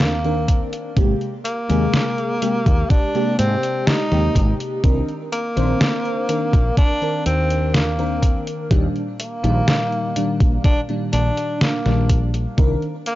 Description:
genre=vaporwave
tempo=62 BPM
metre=4/4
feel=straight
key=C minor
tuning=A4 = 440 Hz
part: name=breathy tenor saxophone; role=melody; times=0.0-13.2 s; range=Bb3 to Eb4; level=-24 LUFS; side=equal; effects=vintage 12-bit sampler grit, tape echo
part: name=FM electric piano with soft pad layer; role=accompaniment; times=0.0-12.9 s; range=Bb2 to C5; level=-23 LUFS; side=left 1 dB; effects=analog chorus, vintage 12-bit sampler grit, tape echo
part: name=woody fretless electric bass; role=bass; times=0.0-12.7 s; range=Ab1 to Ab2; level=-20 LUFS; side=equal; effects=analog chorus
part: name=detuned 8-bit digital drum machine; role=drums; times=0.0-13.2 s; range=hi-hat, snare drum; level=-21 LUFS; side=equal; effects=none
part: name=electronic kick drum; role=drums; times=0.5-12.8 s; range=none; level=-16 LUFS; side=equal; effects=none
room=little or no reverb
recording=dry, gritty hardware recording, transformer saturation, nothing above 7.5 kHz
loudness=-17 LUFS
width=side -16 dB against mid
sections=0.0-13.2 A section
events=none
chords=0.0 Cm9; 1.0 Abmaj9; 4.8 Cm9; 8.7 Ebmaj7; 12.6 Cm9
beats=0.00 | 0.97 1.94 2.90 3.87 | 4.84 5.81 6.77 7.74 | 8.71 9.68 10.64 11.61 | 12.58

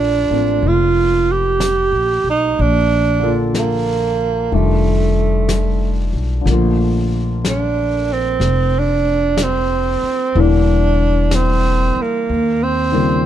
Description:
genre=jazz ballad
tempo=62 BPM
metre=4/4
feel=swing 66% on 8ths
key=Bb major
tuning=A4 = 436 Hz
part: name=breathy tenor saxophone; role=melody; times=0.0-13.3 s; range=A3 to G4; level=-17 LUFS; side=right 4 dB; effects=none
part: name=warm concert grand piano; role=accompaniment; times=0.0-13.3 s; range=Db3 to A4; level=-22 LUFS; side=left 4 dB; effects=none
part: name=upright bass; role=bass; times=0.0-13.3 s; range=E1 to Eb2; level=-18 LUFS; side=left 1 dB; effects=none
part: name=vintage brush drum kit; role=drums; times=0.6-13.3 s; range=brushed snare drum, hi-hat, snare drum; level=-28 LUFS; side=left 3 dB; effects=none
room=little or no reverb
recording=dark, warm production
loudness=-14 LUFS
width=side -11 dB against mid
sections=0.0-6.5 A section; 6.5-13.3 B section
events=tenor saxophone solo 6.5-13.3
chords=0.0 Bbmaj7; 4.5 F13; 6.5 Bbmaj7; 10.4 Em7b5; 12.3 Eb9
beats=0.63 1.60 | 2.58 3.55 4.52 5.50 | 6.47 7.45 8.42 9.39 | 10.36 11.33 12.30

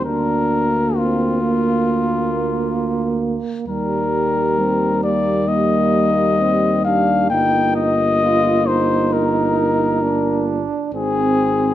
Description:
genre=classical, brass quintet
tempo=66 BPM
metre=4/4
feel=straight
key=Eb major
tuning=A4 = 440 Hz
part: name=dark trumpet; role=melody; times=0.0-11.7 s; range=F4 to G5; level=-19 LUFS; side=left 4 dB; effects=none
part: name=dark French horn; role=accompaniment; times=0.0-11.7 s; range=G3 to C4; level=-22 LUFS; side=left 1 dB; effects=none
part: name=warm trombone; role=accompaniment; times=0.0-11.7 s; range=G3 to F4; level=-22 LUFS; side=right 7 dB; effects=none
part: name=clear bass trombone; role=bass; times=0.0-11.7 s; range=G1 to Eb2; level=-22 LUFS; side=right 2 dB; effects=none
room=moderate recital hall reverb, RT60 1.4 s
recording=close, detailed microphones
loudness=-15 LUFS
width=side -12 dB against mid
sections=0.0-11.7 A section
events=none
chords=0.0 Bb/D; 3.7 Eb; 7.3 Eb/G; 10.9 Ab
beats=| 0.05 0.96 1.86 2.77 | 3.67 4.57 5.48 6.39 | 7.30 8.21 9.12 10.03 | 10.94

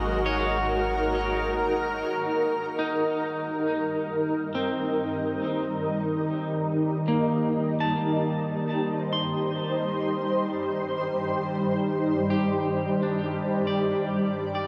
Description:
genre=ambient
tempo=free time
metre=none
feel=none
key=unclear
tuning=A4 = 441 Hz
part: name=granular cloud pad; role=sustained chords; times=0.0-14.7 s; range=G3 to D5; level=-28 LUFS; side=equal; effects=built-in reverb, ensemble chorus
part: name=electric guitar at the edge of break-up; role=arpeggios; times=0.0-14.7 s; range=Bb3 to C6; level=-33 LUFS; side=equal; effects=subtle chorus, diffuse ambient delay
part: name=warm sub bass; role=bass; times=0.0-2.0 s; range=Ab1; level=-36 LUFS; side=equal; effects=tube saturation
part: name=analog drone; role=drone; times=2.1-14.7 s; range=Eb3 to Bb3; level=-36 LUFS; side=equal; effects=chorus
part: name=drifting glass-harmonics texture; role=texture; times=0.0-2.1 s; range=F6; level=-44 LUFS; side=equal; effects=chorus, built-in reverb
room=wet huge ambient reverb, RT60 8.4 s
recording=dreamy mix soaked in reverb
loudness=-27 LUFS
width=mono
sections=0.0-2.1 A section; 2.1-14.7 B section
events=fade-out on clean electric guitar 2.1-14.7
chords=0.0 Ab5; 2.1 Eb; 7.4 Cm; 12.7 Gsus2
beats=free time

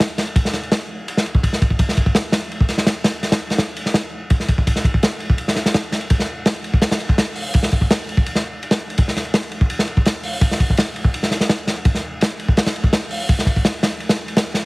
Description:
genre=drum and bass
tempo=167 BPM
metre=4/4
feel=straight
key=none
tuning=none
part: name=crunchy breakbeat drum kit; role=drums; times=0.0-14.6 s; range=hi-hat, kick drum, ride cymbal, snare drum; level=-16 LUFS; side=equal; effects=none
room=light reverb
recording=heavily compressed radio sound, multiband compression, vinyl crackle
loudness=-16 LUFS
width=side -27 dB against mid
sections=0.0-4.7 A section; 4.7-14.7 A section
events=drop 0.0-4.7, 4.7-14.7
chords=none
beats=0.00 | 0.36 0.71 1.07 1.43 | 1.79 2.15 2.51 2.87 | 3.23 3.59 3.95 4.31 | 4.67 5.03 5.39 5.75 | 6.10 6.46 6.82 7.18 | 7.54 7.90 8.26 8.62 | 8.98 9.34 9.70 10.06 | 10.42 10.78 11.13 11.49 | 11.85 12.21 12.57 12.93 | 13.29 13.65 14.01 14.37

